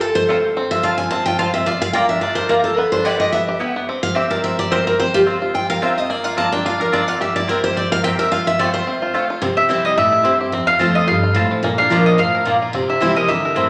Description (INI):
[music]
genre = bluegrass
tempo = 217 BPM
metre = 4/4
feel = swing 54% on 8ths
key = F major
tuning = A4 = 439 Hz
[part]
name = picked steel-string acoustic guitar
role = accompaniment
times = 0.0-13.7 s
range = F2 to A5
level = -20 LUFS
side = equal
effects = none
[part]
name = bluegrass banjo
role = arpeggios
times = 0.3-13.7 s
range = F3 to Bb4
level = -25 LUFS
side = equal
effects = none
[part]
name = mandolin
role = stabs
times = 0.3-13.7 s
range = A3 to Bb5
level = -26 LUFS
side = equal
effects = none
[part]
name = mandolin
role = melody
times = 9.6-13.7 s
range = Eb5 to F5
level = -19 LUFS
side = equal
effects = none
[sound]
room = wet large studio reverb, RT60 1.5 s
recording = none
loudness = -18 LUFS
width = mono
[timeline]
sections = 0.6-9.4 A section; 9.4-13.7 A section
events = steel-string acoustic guitar solo 0.0-9.4; mandolin solo 9.4-13.7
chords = 0.0 Fadd9; 0.6 F; 1.7 Bb; 2.8 G6; 3.9 C; 5.0 Fsus2; 6.1 Bbadd9; 7.2 C; 8.3 Fadd9; 9.4 C; 10.5 F; 11.6 Bb; 12.7 C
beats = 0.01 0.29 | 0.56 0.84 1.12 1.40 | 1.67 1.95 2.23 2.50 | 2.78 3.06 3.33 3.61 | 3.89 4.16 4.44 4.72 | 4.99 5.27 5.55 5.83 | 6.10 6.38 6.66 6.93 | 7.21 7.48 7.76 8.04 | 8.31 8.59 8.87 9.14 | 9.42 9.70 9.97 10.25 | 10.53 10.80 11.08 11.36 | 11.63 11.91 12.19 12.46 | 12.74 13.02 13.29 13.57